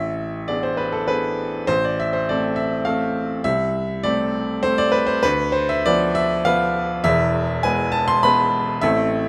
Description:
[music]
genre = classical, romantic character piece for solo piano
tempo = 101 BPM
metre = 3/4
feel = rubato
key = A minor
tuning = A4 = 440 Hz
[part]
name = clear baby grand piano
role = solo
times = 0.0-9.3 s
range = E1 to C6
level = -20 LUFS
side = equal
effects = none
[sound]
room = light reverb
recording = close, detailed microphones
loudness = -20 LUFS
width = mono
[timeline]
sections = 0.0-9.3 A section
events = none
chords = 0.0 E7/A; 1.7 Am; 3.5 Am/C; 5.2 Bdim/D; 7.1 E

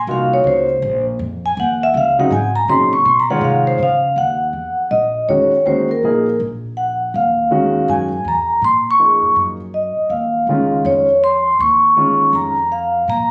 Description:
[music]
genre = modal jazz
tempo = 162 BPM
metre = 4/4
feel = swing 65% on 8ths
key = Eb dorian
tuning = A4 = 440 Hz
[part]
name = vibraphone with medium mallets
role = melody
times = 0.0-13.3 s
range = Bb4 to Db6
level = -17 LUFS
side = equal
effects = none
[part]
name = upright bass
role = bass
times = 0.0-13.3 s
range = Bb1 to Db3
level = -27 LUFS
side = equal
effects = none
[part]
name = warm grand piano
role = accompaniment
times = 0.1-12.5 s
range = Db3 to Db5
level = -22 LUFS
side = equal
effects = none
[sound]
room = light reverb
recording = recorded on a phone in the room, studio reverb, compression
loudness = -16 LUFS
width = mono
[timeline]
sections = 0.0-4.2 A section; 4.2-13.3 B section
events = vibraphone solo 0.0-4.2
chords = 0.0 Bbmadd9; 4.2 Ebm9; 10.1 Bbm (rootless)

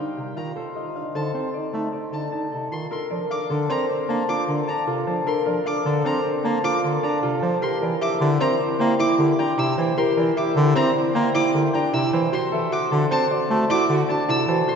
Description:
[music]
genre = classical, minimalist pattern music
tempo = 153 BPM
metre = 6/4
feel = straight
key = unclear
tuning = A4 = 442 Hz
[part]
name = Celtic harp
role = melody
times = 0.0-14.8 s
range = G4 to A5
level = -26 LUFS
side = left 6 dB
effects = none
[part]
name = warm French horn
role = second line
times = 0.0-14.8 s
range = D4 to F#4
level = -29 LUFS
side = right 1 dB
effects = none
[part]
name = dark baby grand piano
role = arpeggios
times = 0.0-14.8 s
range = C4 to C5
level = -25 LUFS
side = right 6 dB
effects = none
[part]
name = clear bass clarinet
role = accompaniment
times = 0.2-14.6 s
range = C3 to C4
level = -25 LUFS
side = equal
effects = none
[part]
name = rich violin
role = arpeggios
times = 0.4-14.8 s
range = A5 to E6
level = -29 LUFS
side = equal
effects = none
[sound]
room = wet cathedral reverb, RT60 4.6 s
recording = recorded in a church or concert hall, nothing above 7.7 kHz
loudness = -20 LUFS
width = side -6 dB against mid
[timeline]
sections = 0.0-2.9 A section; 2.9-14.8 B section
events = none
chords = 0.0 Ebmaj9; 0.6 F7; 2.9 Bbmaj7; 7.6 C7; 12.3 D7

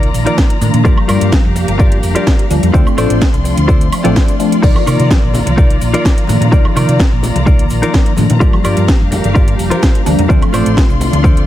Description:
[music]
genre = filtered disco house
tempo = 127 BPM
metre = 4/4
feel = straight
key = C dorian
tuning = A4 = 438 Hz
[part]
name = funky polysynth comp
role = accompaniment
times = 0.0-11.5 s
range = Eb3 to D5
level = -16 LUFS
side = left 1 dB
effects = chorus, phaser, sidechain pumping
[part]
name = clear studio string section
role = sustained chords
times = 0.0-11.5 s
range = F4 to C6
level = -23 LUFS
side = left 2 dB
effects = vintage 12-bit sampler grit, sidechain pumping
[part]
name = direct-recorded clean electric guitar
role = riff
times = 0.0-11.4 s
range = Eb4 to D5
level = -19 LUFS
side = left 2 dB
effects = sidechain pumping
[part]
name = hollow-body short-scale fingered electric bass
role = bass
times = 0.0-11.4 s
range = F1 to C3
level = -15 LUFS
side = equal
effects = sidechain pumping
[part]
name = house drum kit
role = drums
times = 0.0-11.5 s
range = crash cymbal, hi-hat, shaker, snare drum, woodblock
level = -20 LUFS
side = right 1 dB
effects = none
[part]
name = electronic kick drum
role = drums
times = 0.4-11.3 s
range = none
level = -11 LUFS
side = equal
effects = none
[part]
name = egg shaker and congas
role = percussion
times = 4.6-11.3 s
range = none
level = -24 LUFS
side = left 2 dB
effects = none
[sound]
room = little or no reverb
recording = none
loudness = -9 LUFS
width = side -13 dB against mid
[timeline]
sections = 0.0-11.5 A section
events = none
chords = 0.0 Cm11; 0.9 Gm7; 2.7 Dm7; 4.6 Cm11; 8.4 Gm7; 10.3 Dm7

